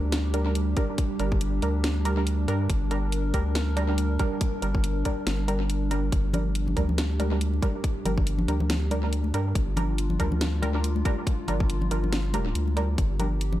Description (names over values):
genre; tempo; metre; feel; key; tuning
deep dubstep; 140 BPM; 4/4; swing 57% on 16ths, half-time; G minor; A4 = 439 Hz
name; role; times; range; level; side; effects
dark analog pad; sustained chords; 0.0-13.6 s; G3 to Bb4; -32 LUFS; equal; chorus
saturated sub bass; bass; 0.0-13.6 s; G1 to G2; -26 LUFS; equal; none
garage drum kit; drums; 0.1-13.5 s; hi-hat, snare drum; -32 LUFS; equal; studio reverb, analog delay
filtered dub chord stab; stabs; 0.3-13.3 s; G3 to Bb4; -33 LUFS; right 2 dB; chorus, dub echo
electronic kick drum; drums; 0.8-13.1 s; none; -28 LUFS; equal; studio reverb
congas; percussion; 6.3-13.6 s; none; -33 LUFS; left 2 dB; analog delay
room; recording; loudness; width
little or no reverb; echo-heavy mix; -23 LUFS; side -14 dB against mid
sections
0.0-13.6 A section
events
none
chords
0.0 Gm